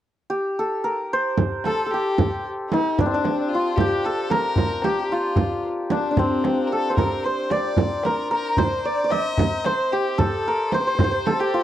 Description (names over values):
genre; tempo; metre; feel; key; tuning
Persian modal ensemble; 75 BPM (dotted quarters); 6/8; straight; unclear; A4 = 440 Hz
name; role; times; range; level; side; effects
santur; melody; 0.3-11.6 s; C4 to Eb5+45c; -22 LUFS; equal; none
frame drum; percussion; 1.4-11.4 s; none; -25 LUFS; right 5 dB; none
tombak; percussion; 1.4-11.6 s; none; -25 LUFS; left 1 dB; none
rich violin; second line; 1.7-11.6 s; C4 to Eb5+39c; -27 LUFS; left 4 dB; none
room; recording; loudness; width
light reverb; dry, close 1970s-style studio recording; -20 LUFS; side -12 dB against mid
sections
0.0-1.4 A section; 1.4-11.6 B section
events
none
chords
none